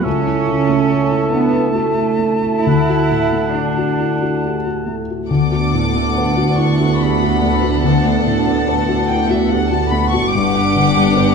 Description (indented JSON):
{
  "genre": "cinematic, emotional film score for orchestra",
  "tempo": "70 BPM",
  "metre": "3/4",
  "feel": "uneven beats, rubato",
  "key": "D major",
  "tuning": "A4 = 441 Hz",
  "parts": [
    { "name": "bright silver concert flute", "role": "second line", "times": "0.0-5.0 s", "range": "A5", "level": "-25 LUFS", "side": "left 2 dB", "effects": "none" },
    { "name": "dark clarinet", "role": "second line", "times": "0.0-4.9 s", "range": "A4", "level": "-24 LUFS", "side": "right 3 dB", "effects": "none" },
    { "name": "warm cor anglais", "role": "second line", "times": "0.0-4.9 s", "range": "E5 to F#5", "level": "-27 LUFS", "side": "right 3 dB", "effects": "none" },
    { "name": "felt-muted upright piano", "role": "accompaniment", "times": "0.0-11.3 s", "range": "C#2 to F#5", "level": "-18 LUFS", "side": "left 3 dB", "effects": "none" },
    { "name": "rich symphonic cello section", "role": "bass", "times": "0.0-11.3 s", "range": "D2 to E4", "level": "-20 LUFS", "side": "right 4 dB", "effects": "none" },
    { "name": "warm studio violin section", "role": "melody", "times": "5.3-11.3 s", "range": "E5 to D6", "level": "-21 LUFS", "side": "left 3 dB", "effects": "none" },
    { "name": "clear studio violin section", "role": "second line", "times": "5.3-11.3 s", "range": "G4 to F#5", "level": "-22 LUFS", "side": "left 2 dB", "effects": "none" },
    { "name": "dark symphonic viola section", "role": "accompaniment", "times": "5.3-11.3 s", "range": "B3 to D4", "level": "-20 LUFS", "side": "right 3 dB", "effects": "none" },
    { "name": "dark symphonic double bass section", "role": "bass", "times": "5.3-11.3 s", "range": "G1 to D2", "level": "-23 LUFS", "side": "right 4 dB", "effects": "none" }
  ],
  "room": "moderate concert hall reverb, RT60 2.1 s",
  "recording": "dark, warm production",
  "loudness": "-14 LUFS",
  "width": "side -5 dB against mid",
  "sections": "0.0-5.3 A section; 5.3-11.3 A section",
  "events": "none",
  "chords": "0.1 A/C#; 2.7 D; 5.3 D6; 10.3 Gmaj7"
}